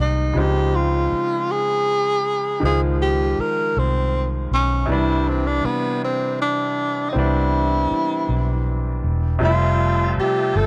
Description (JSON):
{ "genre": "slow six-eight R&B", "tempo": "53 BPM (dotted quarters)", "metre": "6/8", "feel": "straight", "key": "unclear", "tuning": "A4 = 435 Hz", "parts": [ { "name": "breathy tenor saxophone", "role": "melody", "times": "0.0-10.7 s", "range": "B3 to Bb4", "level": "-24 LUFS", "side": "equal", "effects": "none" }, { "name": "clear baby grand piano", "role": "accompaniment", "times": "0.0-10.7 s", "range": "C3 to E5", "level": "-27 LUFS", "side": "equal", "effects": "none" }, { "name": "vintage muted fingered electric bass", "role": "bass", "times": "0.0-10.7 s", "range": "E1 to Db2", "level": "-23 LUFS", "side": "equal", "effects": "none" }, { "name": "tonewheel organ", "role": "sustained chords", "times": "9.4-10.7 s", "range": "F4 to A5", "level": "-30 LUFS", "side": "equal", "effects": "chorus vibrato, fast rotary speaker" } ], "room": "small room reverb", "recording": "dry, gritty hardware recording, cassette tape", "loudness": "-20 LUFS", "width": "mono", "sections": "0.0-9.4 A section; 9.4-10.7 B section", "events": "none", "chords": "0.4 Dbmaj9; 4.9 Cmaj9; 9.4 Fmaj9" }